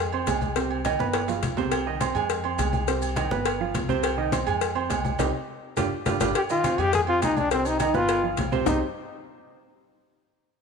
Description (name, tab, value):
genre	latin, salsa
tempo	207 BPM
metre	4/4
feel	straight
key	C harmonic minor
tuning	A4 = 438 Hz
part	clear concert grand piano	accompaniment	0.0-8.8 s	C3 to C6	-28 LUFS	right 7 dB	none
part	upright bass	bass	0.0-8.8 s	G1 to F2	-32 LUFS	left 3 dB	none
part	agogo bells and timbales	percussion	0.1-8.7 s	none	-32 LUFS	right 9 dB	none
part	congas	percussion	0.1-8.7 s	none	-32 LUFS	left 4 dB	none
part	cowbell and bongos	percussion	0.3-8.7 s	none	-30 LUFS	left 14 dB	none
part	maracas	percussion	0.3-8.7 s	none	-42 LUFS	left 17 dB	none
part	bright trombone	melody	6.4-8.8 s	C4 to Ab4	-24 LUFS	left 3 dB	none
room	moderate echo chamber reverb, RT60 1.9 s, small room ambience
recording	1960s-style stereo with parts hard left and right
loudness	-22 LUFS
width	side -5 dB against mid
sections	0.0-6.3 A section; 6.3-8.7 B section; 8.7-9.8 C section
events	drum fill 1.1-1.7, 5.5-6.3; band accent 5.2-6.3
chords	0.0 Fm; 0.6 Cm; 1.1 G7; 1.7 Cm; 2.3 Fm; 2.9 Cm; 3.5 G7; 4.0 Cm; 4.6 Fm; 5.2 Cm; 5.8 G5; 6.3 Cm; 6.9 Fm; 7.5 Cm; 8.1 G7; 8.7 C5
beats	0.27 | 0.56 0.85 1.14 1.43 | 1.72 2.01 2.30 2.59 | 2.88 3.17 3.46 3.74 | 4.03 4.32 4.61 4.90 | 5.19 5.48 5.77 6.06 | 6.35 6.64 6.93 7.22 | 7.51 7.80 8.09 8.38 | 8.67